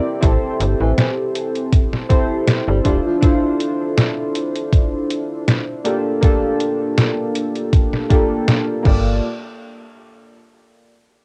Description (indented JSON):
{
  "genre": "vaporwave",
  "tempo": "80 BPM",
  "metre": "4/4",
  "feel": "swing 54% on 16ths",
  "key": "G dorian",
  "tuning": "A4 = 439 Hz",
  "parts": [
    { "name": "warbly lo-fi synth keys", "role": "accompaniment", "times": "0.0-9.2 s", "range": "Bb3 to D5", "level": "-22 LUFS", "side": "equal", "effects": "lush chorus, cassette tape, analog delay" },
    { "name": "slap-like FM bass", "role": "bass", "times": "0.2-3.0, 8.9-9.2 s", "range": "D1 to A1", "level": "-20 LUFS", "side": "equal", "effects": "none" },
    { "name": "detuned 8-bit digital drum machine", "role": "drums", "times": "0.2-9.0 s", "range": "crash cymbal, hi-hat, snare drum", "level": "-22 LUFS", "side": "equal", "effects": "studio reverb, cassette tape" },
    { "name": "electronic kick drum", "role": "drums", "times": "0.2-9.0 s", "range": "none", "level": "-17 LUFS", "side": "equal", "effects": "overdrive, studio reverb, cassette tape" },
    { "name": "mellow tenor saxophone", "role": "melody", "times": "0.8-3.4 s", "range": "E3 to G3", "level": "-29 LUFS", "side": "equal", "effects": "cassette tape, analog delay" }
  ],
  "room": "light reverb",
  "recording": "home recording on cassette",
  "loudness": "-18 LUFS",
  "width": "mono",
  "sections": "0.0-9.2 A section; 9.2-11.2 B section",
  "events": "none",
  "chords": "0.2 Am7; 2.9 Dm9; 5.9 Gm9; 9.2 N.C."
}